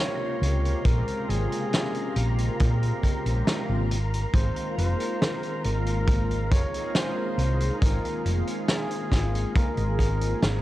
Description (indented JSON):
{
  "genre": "vaporwave",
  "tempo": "69 BPM",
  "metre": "4/4",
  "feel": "straight",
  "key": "Ab major",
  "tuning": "A4 = 439 Hz",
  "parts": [
    { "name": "breathy flugelhorn", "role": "melody", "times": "0.0-10.6 s", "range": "Ab4 to Db5", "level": "-34 LUFS", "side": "equal", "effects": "tape echo" },
    { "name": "mellow synth brass", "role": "accompaniment", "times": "0.0-10.6 s", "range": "C3 to Bb4", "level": "-31 LUFS", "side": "equal", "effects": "wide subtle chorus, analog delay" },
    { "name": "soft string machine", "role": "sustained chords", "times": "0.0-10.6 s", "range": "Bb4 to C6", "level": "-38 LUFS", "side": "equal", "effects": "ensemble chorus, vintage 12-bit sampler grit" },
    { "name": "hollow-body short-scale fingered electric bass", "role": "bass", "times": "0.4-10.6 s", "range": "F1 to Bb2", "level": "-25 LUFS", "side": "equal", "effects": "none" },
    { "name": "loose indie drum kit", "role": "drums", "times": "0.4-10.6 s", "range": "hi-hat, snare drum", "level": "-30 LUFS", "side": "equal", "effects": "none" },
    { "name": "kick drum", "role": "drums", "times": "0.9-10.2 s", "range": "none", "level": "-24 LUFS", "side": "equal", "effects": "none" }
  ],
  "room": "small room ambience",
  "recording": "cassette tape",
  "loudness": "-23 LUFS",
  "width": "side -15 dB against mid",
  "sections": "0.0-10.6 A section",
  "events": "none",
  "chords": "0.0 Bbm9; 3.9 Ab69"
}